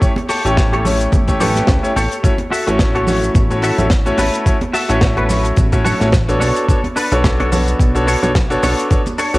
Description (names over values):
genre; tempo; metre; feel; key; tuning
nu-disco, nu disco; 108 BPM; 4/4; swing 56% on 16ths; unclear; A4 = 440 Hz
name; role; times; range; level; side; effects
bright grand piano; accompaniment; 0.0-9.4 s; A3 to C#5; -18 LUFS; equal; sidechain pumping, cassette tape, analog delay
semi-hollow electric guitar; riff; 0.0-9.3 s; D4 to E5; -21 LUFS; left 1 dB; ensemble chorus, cassette tape, analog delay
electronic kick drum; drums; 0.0-9.0 s; none; -15 LUFS; equal; overdrive, studio reverb, cassette tape
tight funk drum kit; drums; 0.0-9.4 s; hi-hat, shaker, snare drum; -23 LUFS; left 1 dB; studio reverb, cassette tape
congas; percussion; 0.2-9.2 s; none; -25 LUFS; right 2 dB; none
chorused synth bass; bass; 0.4-9.4 s; A1 to C#2; -19 LUFS; equal; none
room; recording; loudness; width
light reverb, small room ambience; home recording on cassette; -13 LUFS; side -20 dB against mid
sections
0.0-9.4 A section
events
none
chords
0.0 A7; 2.2 F#m7/A; 6.4 Bm9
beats
| 0.02 0.57 1.13 1.69 | 2.24 2.80 3.35 3.91 | 4.46 5.02 5.58 6.13 | 6.69 7.24 7.80 8.35 | 8.91